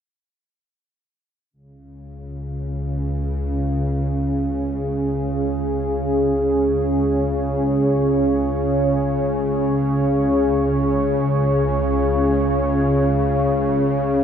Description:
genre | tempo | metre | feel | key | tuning
ambient | free time | none | none | unclear | A4 = 440 Hz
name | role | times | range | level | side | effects
deep dark ambient pad | sustained chords | 3.6-14.2 s | C#4 to C#5 | -21 LUFS | right 1 dB | chorus, built-in reverb
bowed-like drone | drone | 2.0-14.2 s | C#2 to C#3 | -21 LUFS | equal | built-in reverb
room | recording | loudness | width
wet huge ambient reverb, RT60 8.4 s | dark, warm production | -18 LUFS | side -8 dB against mid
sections
1.5-14.2 A section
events
filter sweep on synth drone 1.5-14.2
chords
1.5 C#5

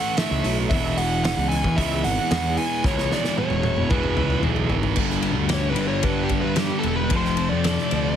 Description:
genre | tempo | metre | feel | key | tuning
quiet-loud alternative rock | 113 BPM | 4/4 | straight | unclear | A4 = 435 Hz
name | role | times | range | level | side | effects
bluesy overdriven lead guitar | melody | 0.0-8.2 s | G4 to G#5 | -27 LUFS | left 1 dB | distortion, slapback echo, plate reverb
twelve-string electric guitar | arpeggios | 0.0-8.2 s | E2 to A4 | -30 LUFS | left 4 dB | tremolo
high-gain distorted guitar | riff | 0.0-8.2 s | E2 to A3 | -26 LUFS | right 11 dB | distortion
loose indie drum kit | drums | 0.2-8.0 s | crash cymbal, hi-hat, kick drum, ride cymbal, snare drum, toms | -26 LUFS | equal | none
fuzz picked electric bass | bass | 0.3-8.2 s | E1 to G2 | -26 LUFS | equal | overdrive
thick fuzz guitar | riff | 5.0-8.2 s | F2 to G3 | -27 LUFS | left 13 dB | distortion
room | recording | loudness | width
light reverb | heavily compressed radio sound | -20 LUFS | side -9 dB against mid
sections
0.0-5.0 A section; 5.0-8.2 B section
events
drum fill 2.8-5.0; lead electric guitar solo 5.0-8.2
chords
0.0 A; 0.7 E; 5.0 G; 7.1 F6

